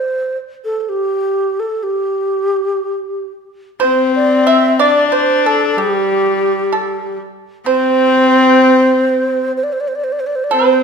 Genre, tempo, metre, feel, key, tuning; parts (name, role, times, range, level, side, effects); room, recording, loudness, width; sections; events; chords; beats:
chinese traditional, Chinese chamber ensemble; 62 BPM; 2/4; uneven beats, rubato; A4 = 438 Hz
breathy reedy low xiao; melody; 0.0-10.8 s; G4 to E5; -16 LUFS; right 2 dB
bright horsehead fiddle; second line; 3.8-10.8 s; G3 to D4; -14 LUFS; left 3 dB
pipa; second line; 3.8-10.8 s; G4 to E5; -16 LUFS; right 3 dB
moderate concert hall reverb, RT60 2.0 s; minimal, uncompressed stereo recording; -12 LUFS; side -6 dB against mid
0.0-3.8 A section; 3.8-10.8 B section
0.87 | 1.82 2.81 | 3.81 4.81 | 5.78 6.72 | 7.67 8.62 | 9.57 10.53